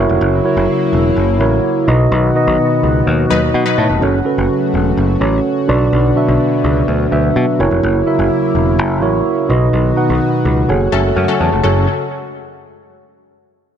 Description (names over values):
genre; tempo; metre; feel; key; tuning
pop; 126 BPM; 4/4; straight; unclear; A4 = 440 Hz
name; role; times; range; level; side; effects
mellow tine electric piano; accompaniment; 0.0-11.9 s; F#2 to A5; -14 LUFS; right 2 dB; none
chorused pulse-width pad; sustained chords; 0.0-11.9 s; C#3 to F#4; -20 LUFS; left 4 dB; none
picked electric bass; bass; 0.0-11.9 s; E1 to B2; -16 LUFS; left 1 dB; none
funky polysynth comp; stabs; 3.3-3.9, 10.9-11.9 s; F#3 to B4; -20 LUFS; left 5 dB; chorus, tape echo
room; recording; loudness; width
moderate lush hall reverb, RT60 2.4 s; dark, warm production; -12 LUFS; side -8 dB against mid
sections
0.0-11.6 A section; 11.6-13.5 B section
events
tine electric piano fill 0.0, 3.1-4.0; band accent 2.1-4.0, 9.7-11.6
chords
0.0 F#7; 1.9 B; 4.0 F#m; 5.7 Bm; 7.6 F#7; 9.5 B; 10.7 F#madd9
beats
| 0.21 0.69 1.16 1.64 | 2.12 2.59 3.07 3.54 | 4.02 4.50 4.97 5.45 | 5.93 6.40 6.88 7.36 | 7.83 8.31 8.78 9.26 | 9.73 10.21 10.69 11.16 | 11.64